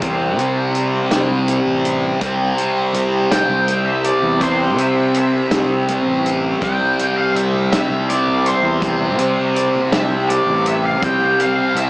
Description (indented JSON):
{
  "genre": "psychedelic rock",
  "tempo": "54 BPM (dotted quarters)",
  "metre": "6/8",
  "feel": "straight",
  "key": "C major",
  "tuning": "A4 = 440 Hz",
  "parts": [
    { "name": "thick fuzz guitar", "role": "riff", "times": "0.0-11.9 s", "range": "C3 to C4", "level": "-17 LUFS", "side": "equal", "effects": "distortion, phaser, dub echo" },
    { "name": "fuzz fingered electric bass", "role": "bass", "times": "0.0-11.9 s", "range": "A1 to C3", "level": "-22 LUFS", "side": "equal", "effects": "overdrive" },
    { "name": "vintage drum kit", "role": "drums", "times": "0.0-11.9 s", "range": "hi-hat, kick drum, snare drum", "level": "-24 LUFS", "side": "equal", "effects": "dub echo" },
    { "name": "octave-fuzz lead guitar", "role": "melody", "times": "3.3-11.9 s", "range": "C5 to G5", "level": "-21 LUFS", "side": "equal", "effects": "distortion, dub echo" },
    { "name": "congas", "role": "percussion", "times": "6.6-11.8 s", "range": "none", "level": "-34 LUFS", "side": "equal", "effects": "none" }
  ],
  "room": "light reverb, small room ambience",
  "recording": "echo-heavy mix, small speaker sound",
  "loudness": "-14 LUFS",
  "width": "side -23 dB against mid",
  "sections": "0.0-11.9 A section",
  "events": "lead electric guitar solo 0.0-11.9",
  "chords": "0.0 C",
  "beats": "| 0.02 1.12 | 2.22 3.32 | 4.42 5.52 | 6.62 7.72 | 8.83 9.93 | 11.03"
}